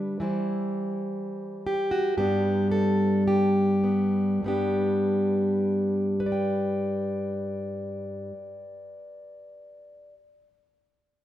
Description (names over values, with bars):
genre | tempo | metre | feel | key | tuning
folk, solo fingerstyle acoustic guitar | 51-64 BPM | 4/4 | straight | G major | A4 = 440 Hz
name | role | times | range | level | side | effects
fingerpicked plugged-in steel-string acoustic guitar | solo | 0.0-10.2 s | G2 to G5 | -24 LUFS | equal | none
room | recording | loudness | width
moderate scoring stage reverb, RT60 1.8 s | minimal, uncompressed stereo recording | -23 LUFS | side -12 dB against mid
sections
0.0-4.4 A section; 4.4-9.1 B section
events
slowing down 0.0-4.4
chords
0.2 C/E; 2.2 G